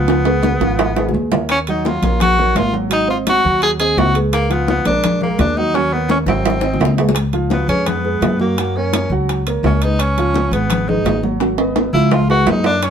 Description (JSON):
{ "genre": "Afro-Cuban jazz", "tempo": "170 BPM", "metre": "4/4", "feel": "straight", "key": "Db mixolydian", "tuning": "A4 = 444 Hz", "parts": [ { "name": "bright tenor saxophone", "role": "melody", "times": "0.0-12.9 s", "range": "Bb3 to Ab4", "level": "-18 LUFS", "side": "equal", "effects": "none" }, { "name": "dark grand piano", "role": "accompaniment", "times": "0.0-12.9 s", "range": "F3 to Gb5", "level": "-22 LUFS", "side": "right 4 dB", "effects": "none" }, { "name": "upright bass", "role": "bass", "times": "0.0-12.9 s", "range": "Ab1 to Gb2", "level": "-19 LUFS", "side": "left 1 dB", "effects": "none" }, { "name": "bongos", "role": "percussion", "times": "0.1-12.9 s", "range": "none", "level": "-24 LUFS", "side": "left 6 dB", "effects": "none" }, { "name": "congas", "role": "percussion", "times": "0.1-12.9 s", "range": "none", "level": "-23 LUFS", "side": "left 2 dB", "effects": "none" }, { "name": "timbales", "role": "percussion", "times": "0.1-12.9 s", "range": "none", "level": "-21 LUFS", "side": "right 4 dB", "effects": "none" } ], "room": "moderate studio reverb, RT60 0.5 s", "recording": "band playing live in one room", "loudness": "-14 LUFS", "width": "side -8 dB against mid", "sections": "0.0-7.2 A section; 7.2-12.9 B section", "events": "drum fill 0.1-1.5, 5.7-7.2, 11.4-12.8; tenor saxophone solo 7.2-12.9", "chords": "0.1 Db9; 1.5 Ebm7; 2.9 Ab7; 4.3 Db7; 5.0 Bbaug7; 5.7 Ebm7; 6.5 Ab7; 7.2 Db7; 8.6 Gbadd9; 10.0 Db9; 11.4 Abm7; 12.1 Db7" }